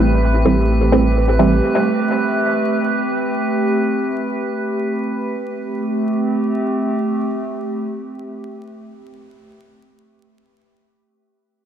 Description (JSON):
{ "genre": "dub techno", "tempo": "free time", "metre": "none", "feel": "none", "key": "A minor", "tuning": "A4 = 440 Hz", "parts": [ { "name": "warbly tape-like pad", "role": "sustained chords", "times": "0.0-9.2 s", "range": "A3 to G4", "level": "-20 LUFS", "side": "equal", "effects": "chorus, built-in reverb" }, { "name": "filtered dub chord stab", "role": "stabs", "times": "0.0-1.5 s", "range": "E3 to C4", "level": "-18 LUFS", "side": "right 1 dB", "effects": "phaser, dub echo" }, { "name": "soft dub sub bass", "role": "bass", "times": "0.0-1.6 s", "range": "A1", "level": "-17 LUFS", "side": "equal", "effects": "none" }, { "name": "drifting glass-harmonics texture", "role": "texture", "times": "0.0-5.4 s", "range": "B4", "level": "-24 LUFS", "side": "right 4 dB", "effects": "chorus, built-in reverb" } ], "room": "light reverb", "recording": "dry, gritty hardware recording, vinyl crackle", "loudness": "-16 LUFS", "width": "side -9 dB against mid", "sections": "0.0-5.4 A section; 5.4-9.1 B section", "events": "none", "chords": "0.0 Am7" }